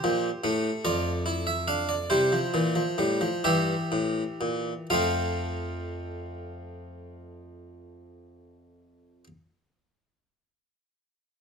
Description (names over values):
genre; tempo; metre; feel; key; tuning
classical, baroque-style 4-part fugue for harpsichord; 39-51 BPM (dotted quarters); 12/8; straight; F major; A4 = 440 Hz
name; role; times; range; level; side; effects
harpsichord; solo; 0.0-9.3 s; F2 to F5; -26 LUFS; equal; none
room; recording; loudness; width
moderate stone room reverb, RT60 1.0 s; close, detailed microphones; -25 LUFS; side -6 dB against mid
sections
0.0-4.9 A section; 4.9-11.0 B section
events
slowing down 0.0-4.9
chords
0.0 F; 2.1 C7; 4.9 F